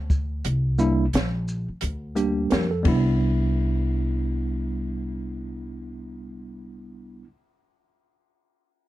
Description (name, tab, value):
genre	hip hop, jazz-hop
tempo	87 BPM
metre	4/4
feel	swing 58% on 16ths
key	C major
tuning	A4 = 439 Hz
part	upright bass	bass	0.0-7.2 s	Bb1 to F2	-26 LUFS	equal	none
part	open jazz drum kit	drums	0.1-3.0 s	hi-hat, kick drum, ride cymbal, shaker, snare drum	-25 LUFS	equal	none
part	mellow tine electric piano	accompaniment	0.8-7.3 s	G3 to Bb4	-26 LUFS	right 1 dB	medium stereo tremolo
room	little or no reverb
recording	dark, warm production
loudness	-22 LUFS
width	side -15 dB against mid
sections	0.0-3.2 A section; 3.2-6.0 B section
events	kick muted 0.4-3.2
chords	0.4 C7sus2; 2.9 Cmaj9